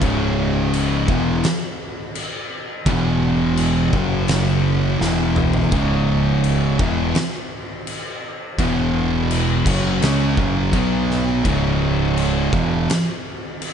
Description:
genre	stoner and doom metal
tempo	84 BPM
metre	4/4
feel	straight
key	C# minor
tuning	A4 = 441 Hz
part	fuzz guitar	riff	0.0-12.9 s	C#2 to C#4	-24 LUFS	right 1 dB	distortion
part	thick fuzz guitar	riff	0.0-12.9 s	C#2 to C#4	-22 LUFS	left 10 dB	distortion
part	thick fuzz guitar	riff	0.0-12.9 s	C#2 to C#4	-22 LUFS	right 7 dB	distortion
part	growling fingered electric bass	bass	0.0-12.9 s	C#1 to C#2	-24 LUFS	equal	overdrive
part	oversized low-tuned drum kit	drums	0.0-13.7 s	crash cymbal, kick drum, snare drum, toms	-24 LUFS	equal	none
room	light reverb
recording	nothing above 10.3 kHz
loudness	-17 LUFS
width	side -8 dB against mid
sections	0.0-13.7 A section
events	drum fill 5.0-5.7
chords	0.0 C#m; 2.9 E5; 3.9 F#5; 5.0 E5; 5.7 C#m; 8.6 E5; 9.7 C#5; 10.7 B5; 11.4 C#m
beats	| 0.01 0.72 1.44 2.15 | 2.86 3.58 4.29 5.00 | 5.72 6.43 7.15 7.86 | 8.58 9.30 10.01 10.73 | 11.45 12.17 12.88 13.60

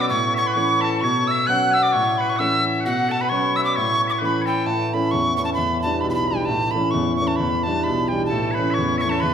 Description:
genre	celtic folk, Celtic polka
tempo	132 BPM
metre	2/4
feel	swing 57% on 8ths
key	A mixolydian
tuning	A4 = 445 Hz
part	bright wooden whistle	melody	0.0-9.3 s	F#5 to F#6	-22 LUFS	right 1 dB	none
part	cimbalom	second line	0.0-7.4 s	F#4 to F#5	-25 LUFS	left 1 dB	none
part	loud bright bagpipes	second line	0.0-4.6, 8.3-9.3 s	F#4 to G#5	-28 LUFS	left 4 dB	none
part	clear concert grand piano	accompaniment	0.0-9.3 s	B1 to D4	-23 LUFS	equal	none
part	hand-pumped harmonium	drone	4.7-9.3 s	A2 to E3	-31 LUFS	left 1 dB	none
room	wet recital hall reverb, RT60 1.4 s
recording	recorded in a church or concert hall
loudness	-18 LUFS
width	side -8 dB against mid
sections	0.0-4.7 A section; 4.7-9.3 B section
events	none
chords	0.1 A; 1.0 Bsus2; 1.9 A; 2.9 Bsus2; 3.8 A; 5.6 Em7; 6.5 A; 7.4 Em7; 8.3 A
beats	| 0.10 0.56 | 1.02 1.48 | 1.94 2.39 | 2.85 3.31 | 3.76 4.22 | 4.68 5.13 | 5.59 6.04 | 6.50 6.95 | 7.41 7.86 | 8.32 8.77 | 9.22

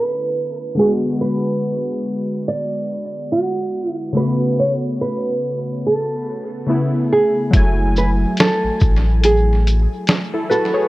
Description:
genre	lo-fi hip hop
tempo	71 BPM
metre	4/4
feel	swing 60% on 16ths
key	F# minor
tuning	A4 = 440 Hz
part	nylon-string guitar	melody	0.0-10.9 s	F#4 to D5	-20 LUFS	right 2 dB	low-pass filter, tape echo
part	warm analog keys	accompaniment	0.0-10.9 s	C#3 to G#5	-21 LUFS	left 1 dB	chorus, cassette tape, low-pass filter
part	sub bass with octave	bass	7.5-9.9 s	F#1 to A1	-16 LUFS	equal	none
part	lo-fi sampler-style drum kit	drums	7.5-10.7 s	hi-hat, kick drum, shaker, snare drum	-17 LUFS	equal	tape echo
room	light reverb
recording	echo-heavy mix, low-pass filter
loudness	-16 LUFS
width	side -18 dB against mid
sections	0.0-7.5 A section; 7.5-10.9 B section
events	filter sweep 0.0-7.5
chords	0.0 Bm11; 0.8 G#m7b5; 4.1 A69; 7.5 F#m9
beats	| 0.77 1.61 2.46 3.30 | 4.15 4.99 5.84 6.68 | 7.53 8.38 9.22 10.06

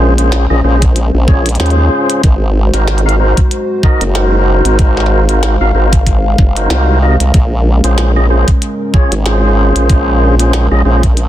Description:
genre	glitch hop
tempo	94 BPM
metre	4/4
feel	swing 57% on 16ths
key	Bb minor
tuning	A4 = 440 Hz
part	dark analog pad	sustained chords	0.0-11.3 s	Ab3 to F5	-19 LUFS	left 1 dB	chorus, sidechain pumping
part	tonewheel organ	stabs	0.0-11.1 s	Db4 to F5	-16 LUFS	equal	overdrive, fast rotary speaker, sidechain pumping, digital delay
part	formant-sweep wobble bass	bass	0.0-11.3 s	Gb1 to Eb2	-11 LUFS	equal	chorus
part	glitchy drum kit	drums	0.2-11.3 s	hi-hat, snare drum	-21 LUFS	equal	soft clipping on snare
part	electronic kick drum	drums	0.8-11.1 s	none	-10 LUFS	equal	none
room	little or no reverb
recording	dense, heavily limited modern master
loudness	-8 LUFS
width	side -12 dB against mid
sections	0.0-11.3 A section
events	none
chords	0.0 Bbm7; 2.2 Ab7; 7.3 Bbm7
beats	0.32 0.96 1.60 | 2.24 2.88 3.51 4.15 | 4.79 5.43 6.07 6.71 | 7.34 7.98 8.62 9.26 | 9.90 10.53 11.17

